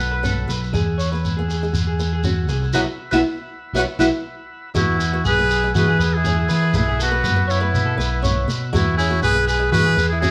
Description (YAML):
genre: highlife guitar band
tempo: 120 BPM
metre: 4/4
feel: straight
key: E major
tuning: A4 = 439 Hz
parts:
  - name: trumpet with metal mute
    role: melody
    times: 0.0-10.3 s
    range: E4 to B4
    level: -24 LUFS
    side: equal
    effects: none
  - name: clear alto saxophone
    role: second line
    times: 0.0-10.3 s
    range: B3 to G#4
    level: -30 LUFS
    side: equal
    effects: none
  - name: picked old ladder-braced acoustic guitar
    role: accompaniment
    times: 0.0-10.3 s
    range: F#3 to E4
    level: -27 LUFS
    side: equal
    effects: none
  - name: overdriven combo organ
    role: sustained chords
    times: 0.0-10.3 s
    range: F#5 to E6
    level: -37 LUFS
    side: equal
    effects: none
  - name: clean electric guitar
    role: arpeggios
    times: 0.0-10.3 s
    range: F#4 to E5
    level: -29 LUFS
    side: equal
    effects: none
  - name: picked electric bass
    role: bass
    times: 0.0-10.3 s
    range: B1 to E3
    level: -23 LUFS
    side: equal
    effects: none
  - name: shekere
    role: percussion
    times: 0.0-10.3 s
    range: none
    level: -27 LUFS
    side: equal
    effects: none
room: moderate stone room reverb, RT60 1.0 s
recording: band playing live in one room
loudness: -19 LUFS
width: mono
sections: 0.0-4.7 A section; 4.7-10.3 B section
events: band accent 2.7-4.7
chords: 0.0 Bsus4; 0.7 Eadd9; 2.7 Bsus4; 4.7 Eadd9; 6.7 Bsus4; 8.7 Eadd9